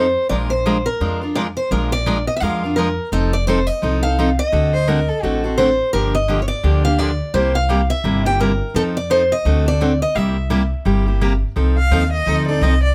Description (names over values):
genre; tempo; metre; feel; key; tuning
acoustic string swing (jazz manouche); 170 BPM; 4/4; swing 60% on 8ths; F mixolydian; A4 = 441 Hz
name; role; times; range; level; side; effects
picked steel-string acoustic guitar; melody; 0.0-11.4 s; A4 to G5; -22 LUFS; equal; none
picked steel-string acoustic guitar; accompaniment; 0.0-12.7 s; C3 to Bb4; -23 LUFS; equal; none
upright bass; bass; 0.0-12.9 s; F1 to F2; -22 LUFS; equal; none
warm violin; second line; 4.7-5.5, 11.8-12.9 s; F#4 to F5; -24 LUFS; equal; none
room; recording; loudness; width
little or no reverb; close, detailed microphones; -18 LUFS; mono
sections
0.0-11.6 A section; 11.6-12.9 B section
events
violin solo 11.6-12.9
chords
0.3 Bb7; 3.1 F7; 4.5 D7b9; 5.9 Gm7; 7.3 C7; 8.7 F7; 9.4 D7; 10.2 C7; 11.6 F7